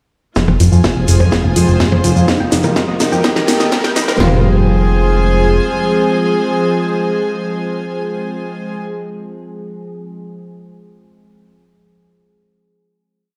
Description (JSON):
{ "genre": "melodic techno", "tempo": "125 BPM", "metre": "4/4", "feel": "straight", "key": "F minor", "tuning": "A4 = 442 Hz", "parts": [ { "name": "evolving wavetable pad", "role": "sustained chords", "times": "1.1-8.8 s", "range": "C3 to Ab4", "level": "-22 LUFS", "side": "equal", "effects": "chorus, built-in reverb, sidechain pumping" }, { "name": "tight sequenced synth", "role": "arpeggios", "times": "0.4-4.4 s", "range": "Eb4 to Ab5", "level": "-24 LUFS", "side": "equal", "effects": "chorus, sidechain pumping, dub echo" }, { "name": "fat analog bass", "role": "bass", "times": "0.4-5.6 s", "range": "Eb1 to F2", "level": "-16 LUFS", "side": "equal", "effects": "sidechain pumping" }, { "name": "techno drum kit", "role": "drums", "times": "0.4-4.3 s", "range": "handclaps, kick drum, snare drum, toms", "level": "-22 LUFS", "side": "equal", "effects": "high-pass filter on kick, high-pass filter on snare, high-pass filter on toms" }, { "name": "techno drum kit", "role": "drums", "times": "0.4-4.2 s", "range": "hi-hat, percussion blips, snare drum", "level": "-19 LUFS", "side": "equal", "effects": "none" }, { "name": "shekere", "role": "percussion", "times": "0.4-4.2 s", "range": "none", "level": "-29 LUFS", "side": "equal", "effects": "none" }, { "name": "riser", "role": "sound effects", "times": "2.0-4.2 s", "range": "none", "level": "-27 LUFS", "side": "equal", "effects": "none" }, { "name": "rich chamber string section", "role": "texture", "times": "0.4-8.8 s", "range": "Eb4 to Ab5", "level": "-22 LUFS", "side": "equal", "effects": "sidechain pumping" } ], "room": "moderate digital room reverb, RT60 1.2 s", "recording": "played on a big sound system in a bare room, stone room reverb, high-pass filter", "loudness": "-14 LUFS", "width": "mono", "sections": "0.4-4.2 build; 4.2-8.0 final chord", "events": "build-up 0.4-4.2; drum fill 0.4-4.2; filter sweep on synth arpeggio sound 0.4-4.2; filter sweep 0.4-4.2", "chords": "0.4 Fm; 2.3 Eb/F; 4.2 Fm", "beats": "| 0.36 0.84 1.32 1.80 | 2.28 2.76 3.24 3.72 | 4.20 4.68 5.16 5.64 | 6.12 6.60 7.08 7.56" }